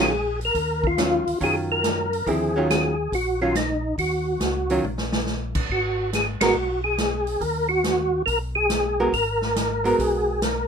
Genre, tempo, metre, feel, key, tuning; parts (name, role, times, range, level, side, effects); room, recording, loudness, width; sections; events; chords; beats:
soul jazz organ trio; 140 BPM; 4/4; swing 67% on 8ths; Eb minor; A4 = 439 Hz
percussive tonewheel organ; melody; 0.0-10.7 s; Eb4 to Bb4; -23 LUFS; equal; slow rotary speaker, chorus vibrato
archtop guitar, miked and amplified; accompaniment; 0.0-10.4 s; D3 to Bb4; -23 LUFS; right 2 dB
mellow tonewheel organ; bass; 0.0-10.7 s; Ab1 to Gb2; -29 LUFS; left 1 dB; chorus vibrato, slow rotary speaker
swinging big-band drum kit; drums; 0.4-10.5 s; crash cymbal, hi-hat, kick drum, ride cymbal, snare drum, toms; -28 LUFS; equal
light reverb; minimal, uncompressed stereo recording; -20 LUFS; side -6 dB against mid
0.0-10.7 A section
drum fill 4.8-5.3; band accent 6.3
0.0 Ebm9; 5.7 Abm9
0.12 | 0.55 0.98 1.41 1.84 | 2.27 2.69 3.12 3.55 | 3.98 4.41 4.84 5.27 | 5.70 6.12 6.55 6.98 | 7.41 7.84 8.27 8.70 | 9.12 9.55 9.98 10.41